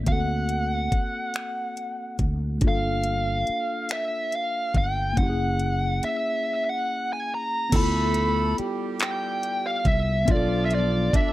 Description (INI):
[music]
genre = slow six-eight R&B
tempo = 47 BPM (dotted quarters)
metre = 6/8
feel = straight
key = unclear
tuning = A4 = 438 Hz
[part]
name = mellow tine electric piano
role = accompaniment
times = 0.0-11.3 s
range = A3 to A4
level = -31 LUFS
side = left 2 dB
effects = medium stereo tremolo
[part]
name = mellow fretless electric bass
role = bass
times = 0.0-11.2 s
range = F#1 to D2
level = -26 LUFS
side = equal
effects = lush chorus
[part]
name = bluesy overdriven lead guitar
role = melody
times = 0.1-11.3 s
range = D5 to B5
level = -27 LUFS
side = equal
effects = distortion, slapback echo
[part]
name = smooth R&B drum kit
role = drums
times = 0.1-11.3 s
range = crash cymbal, finger snaps, handclaps, hi-hat, kick drum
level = -25 LUFS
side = equal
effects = none
[part]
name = mellow horn section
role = stabs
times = 7.7-11.3 s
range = D3 to A4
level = -31 LUFS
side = right 6 dB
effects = none
[sound]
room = little or no reverb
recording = none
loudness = -22 LUFS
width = side -16 dB against mid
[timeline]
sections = 0.0-7.7 A section; 7.7-11.3 B section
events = break 6.5-7.7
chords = 0.1 D7b13; 2.6 Gm9; 5.2 F#9; 7.7 Dm69; 10.3 Bm7b5